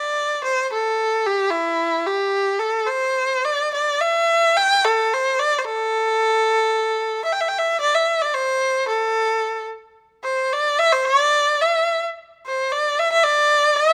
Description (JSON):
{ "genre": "chinese traditional", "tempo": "110 BPM", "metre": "2/4", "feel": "rubato", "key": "A yu mode", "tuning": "A4 = 445 Hz", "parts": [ { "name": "clear erhu", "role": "solo", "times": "0.0-13.9 s", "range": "E4 to G5", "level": "-20 LUFS", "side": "equal", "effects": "none" } ], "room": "light reverb", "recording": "close, detailed microphones", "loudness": "-20 LUFS", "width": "mono", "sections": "0.0-7.8 A section; 7.8-13.9 B section", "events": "none", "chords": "none" }